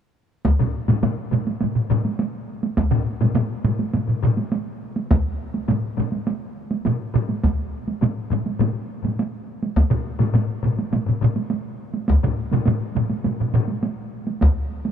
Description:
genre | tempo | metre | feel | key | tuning
japanese traditional, taiko drum ensemble | 103 BPM | 4/4 | straight | none | none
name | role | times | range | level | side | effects
solo taiko drums | percussion | 0.4-14.9 s | none | -26 LUFS | right 4 dB | none
taiko ensemble | percussion | 0.5-14.6 s | none | -20 LUFS | left 1 dB | none
taiko ensemble | percussion | 0.6-13.7 s | none | -25 LUFS | left 5 dB | none
taiko ensemble | percussion | 0.6-13.7 s | none | -24 LUFS | right 2 dB | none
room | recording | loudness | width
light reverb | dark, warm production | -20 LUFS | side -8 dB against mid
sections
0.4-14.9 A section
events
none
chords
none

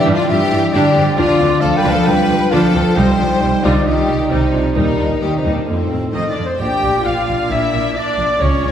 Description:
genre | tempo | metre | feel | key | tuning
cinematic | 134 BPM | 4/4 | straight | unclear | A4 = 440 Hz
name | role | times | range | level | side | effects
rich chamber violin section | melody | 0.0-8.7 s | C4 to G5 | -21 LUFS | left 3 dB | none
bright symphonic violin section | second line | 0.0-8.7 s | C4 to G5 | -26 LUFS | left 2 dB | none
dark clarinet | second line | 0.0-6.4 s | A4 to G5 | -20 LUFS | equal | none
warm French horn section | sustained chords | 0.0-8.7 s | F3 to F4 | -22 LUFS | left 2 dB | none
rich symphonic cello section | bass | 0.0-8.7 s | A2 to G3 | -20 LUFS | right 2 dB | none
clear symphonic viola section | accompaniment | 0.1-8.7 s | D3 to G4 | -21 LUFS | equal | none
rich symphonic double bass section | bass | 0.1-8.7 s | Bb1 to G2 | -21 LUFS | right 1 dB | none
clear oboe | second line | 6.1-8.7 s | C5 to G5 | -26 LUFS | equal | none
mellow hollow concert flute | second line | 6.1-8.7 s | C5 to G5 | -23 LUFS | left 1 dB | none
clear trumpet | stabs | 6.6-8.7 s | Db5 to D5 | -23 LUFS | right 3 dB | none
room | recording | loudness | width
wet scoring stage reverb, RT60 2.0 s | heard from further back in the room | -13 LUFS | side -9 dB against mid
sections
0.0-6.6 A section; 6.6-8.7 B section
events
none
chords
0.0 G5; 1.2 Dm; 3.0 Cm; 4.8 Eb; 5.7 F7; 6.6 Bb

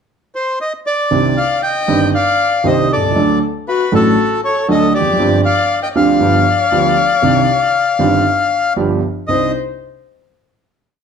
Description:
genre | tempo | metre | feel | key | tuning
tango | 118 BPM | 4/4 | rubato | C harmonic minor | A4 = 439 Hz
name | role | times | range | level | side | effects
bandoneon | melody | 0.4-9.5 s | A4 to G5 | -15 LUFS | left 3 dB | slapback echo
warm baby grand piano | accompaniment | 1.1-9.5 s | G1 to A4 | -15 LUFS | right 3 dB | none
warm violin | second line | 1.4-9.5 s | F#4 to Eb5 | -21 LUFS | left 7 dB | none
room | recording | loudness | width
moderate large studio reverb, RT60 0.9 s | dark, warm production | -12 LUFS | side -6 dB against mid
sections
0.0-1.1 pickup bar; 1.1-9.3 A section; 9.3-11.0 final chord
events
none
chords
0.0 N.C.; 1.1 Cmadd9; 3.2 D; 5.2 G7sus4; 6.2 G7; 7.2 Cmadd9; 8.8 G7; 9.3 Cmadd9

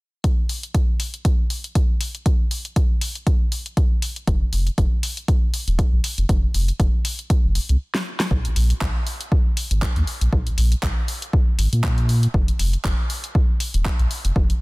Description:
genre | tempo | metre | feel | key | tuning
deep house | 119 BPM | 4/4 | swing 56% on 16ths | unclear | A4 = 440 Hz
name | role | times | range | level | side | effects
deep house drum kit | drums | 0.2-14.6 s | handclaps, hi-hat, snare drum | -27 LUFS | left 1 dB | studio reverb
electronic kick drum | drums | 0.2-14.5 s | none | -19 LUFS | equal | studio reverb
warm sub bass | bass | 4.3-14.5 s | Eb1 to Bb2 | -20 LUFS | equal | tube saturation, sidechain pumping
room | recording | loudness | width
digital ambience | dense, heavily limited modern master | -18 LUFS | side -24 dB against mid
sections
0.2-8.3 A section; 8.3-14.6 B section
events
stop 7.8-8.3; drum fill 7.9-8.3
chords
none

